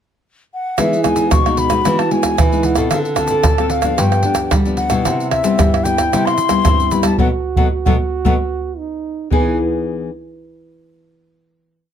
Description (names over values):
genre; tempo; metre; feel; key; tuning
samba and choro; 112 BPM; 4/4; straight; unclear; A4 = 440 Hz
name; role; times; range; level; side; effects
baroque flute; melody; 0.5-9.6 s; E5 to C#6; -20 LUFS; left 4 dB; none
dark trombone; second line; 0.8-9.6 s; B3 to A4; -23 LUFS; right 9 dB; none
nylon-string guitar; accompaniment; 0.8-10.1 s; G2 to A4; -20 LUFS; left 7 dB; none
nylon-string guitar; bass; 0.8-9.6 s; G2 to C4; -21 LUFS; right 1 dB; none
tube shaker, surdo, pandeiro and tamborim; percussion; 0.8-9.4 s; none; -17 LUFS; right 2 dB; none
room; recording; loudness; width
light reverb; close, detailed microphones; -13 LUFS; side -9 dB against mid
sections
0.0-0.8 pickup bar; 0.8-9.3 A section; 9.3-11.5 final chord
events
band accent 7.2-9.3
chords
0.0 N.C.; 0.8 Emaj7; 2.9 Dm7; 4.0 G7; 5.1 Cmaj7; 7.2 B7; 9.3 Emaj7